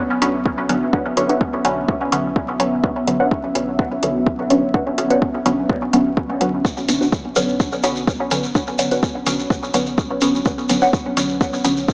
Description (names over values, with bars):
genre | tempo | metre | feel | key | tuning
dub techno | 126 BPM | 4/4 | straight | B minor | A4 = 440 Hz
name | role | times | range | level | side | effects
deep dark ambient pad | sustained chords | 0.0-11.9 s | B3 to E5 | -26 LUFS | equal | chorus, built-in reverb, sidechain pumping
filtered dub chord stab | stabs | 0.0-11.8 s | D3 to C#4 | -23 LUFS | equal | phaser, sidechain pumping, dub echo
soft dub sub bass | bass | 0.0-11.9 s | F#1 to B1 | -39 LUFS | equal | sidechain pumping
electronic hi-hat | drums | 0.2-11.7 s | none | -28 LUFS | equal | none
electronic kick drum | drums | 0.5-11.9 s | none | -22 LUFS | equal | none
filtered dub chord stab | riff | 0.9-10.9 s | D4 to F#5 | -26 LUFS | equal | phaser, analog chorus, sidechain pumping, dub echo
shekere | percussion | 6.7-11.9 s | none | -30 LUFS | equal | none
room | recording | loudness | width
light reverb | dry, gritty hardware recording, vinyl crackle, small speaker sound | -19 LUFS | mono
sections
0.0-11.9 A section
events
none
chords
0.0 Bmadd9